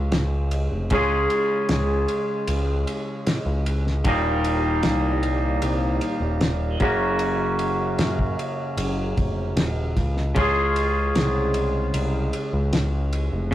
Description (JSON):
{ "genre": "psychedelic rock", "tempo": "76 BPM", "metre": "4/4", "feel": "straight", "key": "unclear", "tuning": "A4 = 440 Hz", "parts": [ { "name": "twangy electric guitar", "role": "riff", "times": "0.0-13.5 s", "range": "Eb2 to Ab4", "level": "-24 LUFS", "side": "equal", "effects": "none" }, { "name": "growling picked electric bass", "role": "bass", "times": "0.0-13.5 s", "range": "Eb1 to Gb2", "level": "-25 LUFS", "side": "equal", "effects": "overdrive" }, { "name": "cloth-damped thuddy drum kit", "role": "drums", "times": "0.1-13.3 s", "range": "kick drum, ride cymbal, snare drum", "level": "-27 LUFS", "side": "equal", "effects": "none" } ], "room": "moderate studio reverb, RT60 0.5 s", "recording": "rough rehearsal-room recording, warm saturation", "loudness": "-20 LUFS", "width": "side -13 dB against mid", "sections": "0.0-13.5 A section", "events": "none", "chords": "0.0 Db; 4.1 Eb; 6.8 Gb; 10.4 Db" }